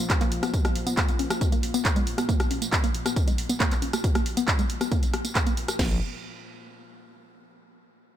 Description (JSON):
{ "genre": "driving peak-time techno", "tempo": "137 BPM", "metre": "4/4", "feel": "straight", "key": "unclear", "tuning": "A4 = 440 Hz", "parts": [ { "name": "warbly dusty pluck", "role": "riff", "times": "0.0-6.0 s", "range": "Ab3 to Bb4", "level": "-30 LUFS", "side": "left 1 dB", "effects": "chorus, sidechain pumping, ping-pong delay" }, { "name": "analog drone", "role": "drone", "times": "0.0-5.8 s", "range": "Bb2 to F3", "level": "-38 LUFS", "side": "left 1 dB", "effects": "chorus, sidechain pumping" }, { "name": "techno drum kit", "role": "drums", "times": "0.1-5.9 s", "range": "crash cymbal, kick drum, snare drum", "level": "-25 LUFS", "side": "equal", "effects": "none" }, { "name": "techno drum kit", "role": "drums", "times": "0.1-5.8 s", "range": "handclaps, hi-hat, rim click, tambourine", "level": "-28 LUFS", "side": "equal", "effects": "none" }, { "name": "growling FM bass", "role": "bass", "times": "5.8-6.0 s", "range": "Bb1", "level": "-29 LUFS", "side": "equal", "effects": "sidechain pumping" } ], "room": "digital ambience", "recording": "none", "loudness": "-22 LUFS", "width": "side -11 dB against mid", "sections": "0.0-5.8 A section; 5.8-7.5 B section", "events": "filter sweep on synth arpeggio sound 0.0-5.8", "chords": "0.0 Bb5; 5.8 N.C." }